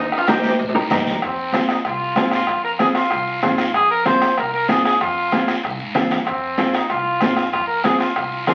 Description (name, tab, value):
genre	latin, cumbia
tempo	190 BPM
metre	4/4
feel	straight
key	F minor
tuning	A4 = 440 Hz
part	combo organ	melody	0.0-0.6 s	Eb4 to G4	-26 LUFS	equal	none
part	warm trumpet	second line	0.0-8.5 s	C4 to C5	-22 LUFS	equal	none
part	upright bass	bass	0.0-8.5 s	Bb1 to Bb2	-37 LUFS	equal	none
part	bombo	percussion	0.1-8.5 s	none	-27 LUFS	equal	none
part	timbales and cowbell	percussion	0.2-8.5 s	none	-30 LUFS	equal	none
part	mellow electric guitar	accompaniment	0.3-8.5 s	C4 to Bb4	-24 LUFS	equal	spring reverb
part	congas	percussion	0.3-8.5 s	none	-29 LUFS	equal	none
part	guiro	percussion	0.3-8.5 s	none	-32 LUFS	equal	none
room	wet studio reverb, RT60 0.6 s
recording	very old 78 rpm record, vinyl crackle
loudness	-19 LUFS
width	mono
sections	0.0-1.2 A section; 1.2-8.5 B section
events	drum fill 0.0-1.2; trumpet solo 1.2-8.5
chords	0.0 Eb; 1.2 Fm